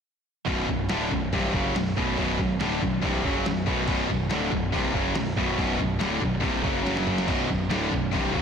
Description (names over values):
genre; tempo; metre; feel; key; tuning
heavy metal; 141 BPM; 4/4; straight; B minor; A4 = 440 Hz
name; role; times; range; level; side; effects
heavy high-gain guitar; riff; 0.5-8.4 s; B1 to F#3; -28 LUFS; right 9 dB; distortion
tight distorted guitar; riff; 0.5-8.4 s; B1 to F#3; -27 LUFS; left 9 dB; distortion, slapback echo
fuzz picked electric bass; bass; 0.5-8.4 s; B0 to F#1; -32 LUFS; equal; overdrive
lo-fi sampler-style drum kit; drums; 0.5-8.4 s; crash cymbal, hi-hat, kick drum, snare drum, toms; -31 LUFS; equal; none
thick fuzz guitar; riff; 7.3-8.4 s; B1 to F#3; -32 LUFS; left 1 dB; distortion
room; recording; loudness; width
moderate lush hall reverb, RT60 1.8 s; big arena sound; -23 LUFS; side -7 dB against mid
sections
0.5-8.4 A section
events
drum fill 6.9-7.3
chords
0.5 Bm; 6.9 F#5; 7.3 Bm